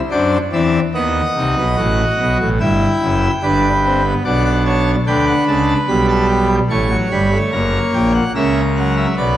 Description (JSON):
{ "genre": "classical, baroque-style 4-part fugue for pipe organ", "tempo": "73 BPM", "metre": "4/4", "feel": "straight", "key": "unclear", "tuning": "A4 = 439 Hz", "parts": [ { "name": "pipe organ, full organ", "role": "solo", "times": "0.1-9.4 s", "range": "F#1 to C#6", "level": "-13 LUFS", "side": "equal", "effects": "none" } ], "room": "wet scoring stage reverb, RT60 2.0 s", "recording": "dark, warm production, vinyl crackle", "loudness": "-13 LUFS", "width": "side -12 dB against mid", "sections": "0.0-9.4 A section", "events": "none", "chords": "0.0 Cadd9; 1.0 B7; 2.6 Em; 4.2 Bm; 5.9 Gmaj9#11; 7.5 F#7" }